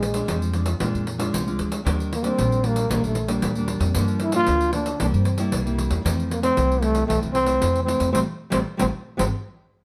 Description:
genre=samba and choro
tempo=115 BPM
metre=4/4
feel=straight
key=unclear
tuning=A4 = 435 Hz
part: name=breathy trombone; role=melody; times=0.0-9.2 s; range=Ab3 to F4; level=-25 LUFS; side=equal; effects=none
part: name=nylon-string guitar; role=accompaniment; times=0.0-9.3 s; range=F2 to F4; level=-29 LUFS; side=equal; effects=none
part: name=upright bass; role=bass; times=0.0-9.3 s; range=Ab1 to G2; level=-27 LUFS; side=equal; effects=none
part: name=pandeiro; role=percussion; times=0.0-9.3 s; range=none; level=-32 LUFS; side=equal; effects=none
room=moderate studio reverb, RT60 0.9 s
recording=none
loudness=-23 LUFS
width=mono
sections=0.0-9.8 A section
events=band accent 8.1-9.8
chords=0.0 Bb7; 1.9 Ebmaj7; 4.0 Gm7; 5.0 C7; 6.1 Fmaj7; 8.1 Am7; 9.2 N.C.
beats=0.29 0.81 1.33 | 1.86 2.38 2.91 3.43 | 3.96 4.48 5.00 5.53 | 6.05 6.57 7.10 7.62 | 8.14 8.67 9.19

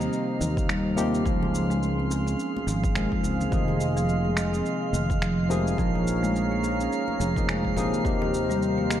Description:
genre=organic downtempo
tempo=106 BPM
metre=4/4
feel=swing 58% on 16ths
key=F minor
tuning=A4 = 439 Hz
part: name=barky tine electric piano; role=accompaniment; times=0.0-9.0 s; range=C3 to Ab4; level=-30 LUFS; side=left 3 dB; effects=lush chorus, sidechain pumping, ping-pong delay
part: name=warm analog pad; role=sustained chords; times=0.0-9.0 s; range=G4 to C6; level=-33 LUFS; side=right 2 dB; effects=chorus, sidechain pumping
part: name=marimba with soft mallets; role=arpeggios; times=0.0-8.9 s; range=Eb3 to Db4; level=-28 LUFS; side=right 1 dB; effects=ping-pong delay
part: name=sustaining fretless electric bass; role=bass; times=0.0-9.0 s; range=F1 to F2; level=-29 LUFS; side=equal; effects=sidechain pumping
part: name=electronic cabasa and finger snaps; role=drums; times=0.0-9.0 s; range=none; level=-34 LUFS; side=equal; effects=studio reverb
part: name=drifting glass-harmonics texture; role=texture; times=0.0-9.0 s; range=F5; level=-35 LUFS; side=right 2 dB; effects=chorus, built-in reverb
part: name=congas and bongos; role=percussion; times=0.4-9.0 s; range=none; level=-39 LUFS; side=left 2 dB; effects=none
part: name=electronic kick drum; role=drums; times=0.6-8.2 s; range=none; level=-29 LUFS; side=equal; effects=overdrive, studio reverb
room=light reverb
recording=dark, warm production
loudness=-23 LUFS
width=side -11 dB against mid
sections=0.0-9.0 A section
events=none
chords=0.0 Eb6; 1.3 Dbmaj7; 3.5 Fm7; 5.8 Bbm7; 8.0 Eb6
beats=0.12 0.69 | 1.26 1.82 2.39 2.96 | 3.52 4.09 4.65 5.22 | 5.79 6.35 6.92 7.48 | 8.05 8.62

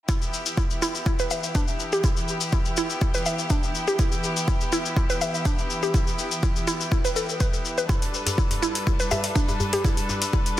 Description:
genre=afro house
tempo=123 BPM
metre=4/4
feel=straight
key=E minor pentatonic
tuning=A4 = 442 Hz
part: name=rich chamber string section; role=sustained chords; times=0.1-10.6 s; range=E3 to B4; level=-30 LUFS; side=equal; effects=vintage 12-bit sampler grit, sidechain pumping
part: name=mallet-like synth pluck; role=arpeggios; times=0.1-10.4 s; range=D4 to E5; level=-28 LUFS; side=right 1 dB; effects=chorus, sidechain pumping, dub echo
part: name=electronic kick drum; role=drums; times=0.1-10.4 s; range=none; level=-24 LUFS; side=equal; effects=none
part: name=electronic shaker and hi-hat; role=drums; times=0.1-10.6 s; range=none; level=-30 LUFS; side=left 4 dB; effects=overdrive
part: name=djembe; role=percussion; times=7.9-10.4 s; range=none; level=-31 LUFS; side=left 1 dB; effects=none
room=moderate recital hall reverb, RT60 1.5 s, digital ambience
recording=dense, heavily limited modern master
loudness=-22 LUFS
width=side -13 dB against mid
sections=0.1-10.6 A section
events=none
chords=0.1 Em; 7.9 G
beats=| 0.09 0.58 1.06 1.55 | 2.04 2.53 3.02 3.50 | 3.99 4.48 4.97 5.46 | 5.94 6.43 6.92 7.41 | 7.89 8.38 8.87 9.36 | 9.85 10.33

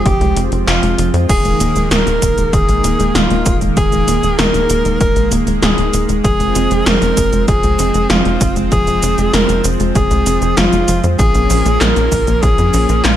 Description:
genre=synthwave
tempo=97 BPM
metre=4/4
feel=straight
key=unclear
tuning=A4 = 440 Hz
part: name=breathy tenor saxophone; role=melody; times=0.0-13.2 s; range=F4 to Bb4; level=-17 LUFS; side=equal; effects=digital delay
part: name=lush unison pad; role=sustained chords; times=0.0-13.2 s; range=Eb3 to Db4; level=-20 LUFS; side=right 1 dB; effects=chorus, vintage 12-bit sampler grit, sidechain pumping
part: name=tight sequencer bass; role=bass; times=0.0-13.2 s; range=Eb1 to F2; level=-17 LUFS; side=equal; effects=none
part: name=soft round pluck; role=arpeggios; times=0.1-13.1 s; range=Eb3 to C5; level=-22 LUFS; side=right 1 dB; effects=chorus, digital delay
part: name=80s electronic pad drums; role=drums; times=0.1-13.2 s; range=cabasa, crash cymbal, handclaps, hi-hat, snare drum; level=-18 LUFS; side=equal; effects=overdrive, high-pass filter on hats, high-pass filter on snare, high-pass filter on cymbals, high-pass filter on perc, gated reverb
part: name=electronic kick drum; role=drums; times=0.1-12.6 s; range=none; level=-17 LUFS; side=equal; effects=overdrive
room=digital ambience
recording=none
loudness=-11 LUFS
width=side -11 dB against mid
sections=0.0-1.3 A section; 1.3-13.2 B section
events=filter sweep on synth arpeggio sound 0.0-1.3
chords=0.0 Fm; 1.3 Ebsus4; 6.2 Fm; 11.2 Bbm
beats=0.06 0.68 | 1.29 1.91 2.53 3.15 | 3.77 4.39 5.01 5.62 | 6.24 6.86 7.48 8.10 | 8.72 9.34 9.95 10.57 | 11.19 11.81 12.43 13.05

